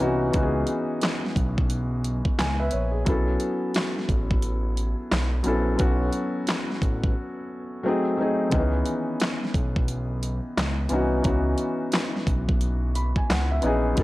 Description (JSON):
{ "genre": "lo-fi hip hop", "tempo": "88 BPM", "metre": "4/4", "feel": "swing 63% on 16ths", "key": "C# minor", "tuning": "A4 = 440 Hz", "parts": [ { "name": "felt-muted upright piano", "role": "accompaniment", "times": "0.0-14.0 s", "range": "D#3 to B5", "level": "-26 LUFS", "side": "left 1 dB", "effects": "cassette tape, low-pass filter" }, { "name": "smooth synth bass", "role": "bass", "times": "0.0-14.0 s", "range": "A1 to C#2", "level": "-26 LUFS", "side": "equal", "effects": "none" }, { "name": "dubstep drum kit", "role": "drums", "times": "0.3-14.0 s", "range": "handclaps, hi-hat, kick drum, snare drum", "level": "-25 LUFS", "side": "equal", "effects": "overdrive" } ], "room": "little or no reverb", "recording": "dry, gritty hardware recording", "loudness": "-22 LUFS", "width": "side -18 dB against mid", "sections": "0.0-14.0 A section", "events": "drums muted 7.2-8.5", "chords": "0.0 C#m9; 3.1 B9sus4; 7.8 G#7b9; 8.5 C#m9" }